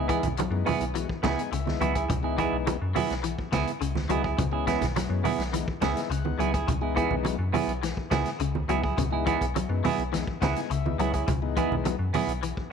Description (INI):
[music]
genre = afrobeat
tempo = 104 BPM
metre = 4/4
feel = straight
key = C# minor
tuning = A4 = 440 Hz
[part]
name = combo organ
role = accompaniment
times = 0.0-12.0 s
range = E3 to G#5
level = -34 LUFS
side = left 14 dB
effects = none
[part]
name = semi-hollow electric guitar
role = arpeggios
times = 0.0-12.6 s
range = C#3 to F#3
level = -32 LUFS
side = left 11 dB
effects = ensemble chorus
[part]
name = semi-hollow electric guitar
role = stabs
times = 0.0-12.3 s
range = B3 to G#4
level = -29 LUFS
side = right 8 dB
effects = harmonic tremolo
[part]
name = metallic FM bass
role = bass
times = 0.0-12.5 s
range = B1 to F#2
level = -30 LUFS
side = left 1 dB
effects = none
[part]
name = vintage drum kit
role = drums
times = 0.1-12.7 s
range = hi-hat, kick drum, snare drum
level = -34 LUFS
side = left 2 dB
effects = none
[part]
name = congas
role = percussion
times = 0.3-12.3 s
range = none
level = -32 LUFS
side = right 7 dB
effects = none
[sound]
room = light reverb, studio reverb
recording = 1960s-style stereo with parts hard left and right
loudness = -24 LUFS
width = side -6 dB against mid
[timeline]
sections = 0.0-12.7 A section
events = transistor combo organ fill 1.0-2.1, 5.5-6.7, 10.1-11.3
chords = 0.0 C#m7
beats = 0.38 0.95 1.52 | 2.10 2.67 3.24 3.82 | 4.39 4.96 5.54 6.11 | 6.69 7.26 7.84 8.41 | 8.98 9.56 10.13 10.71 | 11.28 11.85 12.43